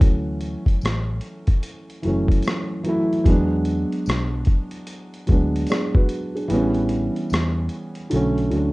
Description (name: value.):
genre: lo-fi hip hop.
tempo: 74 BPM.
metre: 4/4.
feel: swing 62% on 16ths.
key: unclear.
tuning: A4 = 440 Hz.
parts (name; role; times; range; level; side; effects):
felt-muted upright piano; accompaniment; 0.0-8.7 s; D3 to D5; -23 LUFS; right 1 dB; plate reverb.
vintage muted fingered electric bass; bass; 0.0-8.7 s; F#1 to E2; -24 LUFS; equal; none.
boom bap sampler-style drum kit; drums; 0.0-8.7 s; hi-hat, kick drum, rim click; -19 LUFS; equal; vintage 12-bit sampler grit.
tambourine; percussion; 0.8-7.5 s; none; -46 LUFS; left 4 dB; none.
room: light reverb.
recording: rough home demo mix, cassette tape, nothing above 10.4 kHz.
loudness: -19 LUFS.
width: side -21 dB against mid.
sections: 0.0-8.7 A section.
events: kick muted 6.5-8.7.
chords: 0.0 Dmaj9; 3.3 E7; 6.5 A7; 8.1 Bm9.